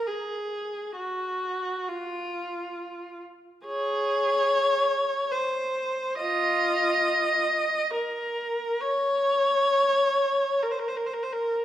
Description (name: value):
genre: classical, free, expressive piece for unaccompanied viola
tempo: 69 BPM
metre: 3/4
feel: uneven beats, rubato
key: Db major, Ab major from 3.7 s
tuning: A4 = 440 Hz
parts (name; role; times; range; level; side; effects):
- rich viola; solo; 0.0-11.6 s; F4 to Eb5; -24 LUFS; equal; none
room: wet recital hall reverb, RT60 1.6 s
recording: recorded in a church or concert hall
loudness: -24 LUFS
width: side -12 dB against mid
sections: 0.0-11.6 A section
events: none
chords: none